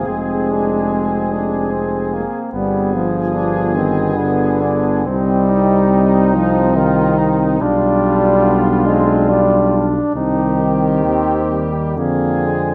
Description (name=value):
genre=classical, hymn-like piece for brass band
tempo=71 BPM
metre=3/4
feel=uneven beats, rubato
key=C minor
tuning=A4 = 440 Hz
part: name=mellow trumpet section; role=melody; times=0.0-12.7 s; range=Eb4 to Ab4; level=-27 LUFS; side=equal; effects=none
part: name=warm flugelhorn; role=second line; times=0.0-12.7 s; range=G3 to F4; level=-25 LUFS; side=equal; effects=none
part: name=clear euphonium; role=accompaniment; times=0.0-12.7 s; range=B3 to D4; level=-24 LUFS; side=equal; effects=none
part: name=warm trombone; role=accompaniment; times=0.0-12.7 s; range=D3 to Ab3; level=-20 LUFS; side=equal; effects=none
part: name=dark tuba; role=bass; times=0.0-12.7 s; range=F1 to F2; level=-22 LUFS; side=equal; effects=none
room=moderate scoring stage reverb, RT60 1.6 s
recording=nothing above 11.0 kHz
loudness=-16 LUFS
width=mono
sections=0.0-12.7 A section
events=none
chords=0.1 Fm6; 2.5 G7b9; 5.1 Cm; 7.6 G7/B; 10.2 Cm; 12.0 Fm